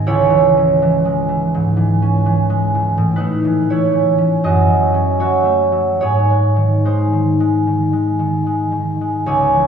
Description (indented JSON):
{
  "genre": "classical, solo harp piece",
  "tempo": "68-84 BPM",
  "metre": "4/4",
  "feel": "rubato",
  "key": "unclear",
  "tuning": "A4 = 442 Hz",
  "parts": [
    { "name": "concert harp", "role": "solo", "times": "0.0-9.7 s", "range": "C#2 to D#5", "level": "-13 LUFS", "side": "right 1 dB", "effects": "none" }
  ],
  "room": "wet scoring stage reverb, RT60 1.6 s",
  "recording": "heard from further back in the room, small room ambience",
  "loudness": "-13 LUFS",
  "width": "side -7 dB against mid",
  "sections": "0.0-9.3 A section",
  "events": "none",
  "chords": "0.0 C#m; 3.0 A; 4.4 F#m; 6.0 G#"
}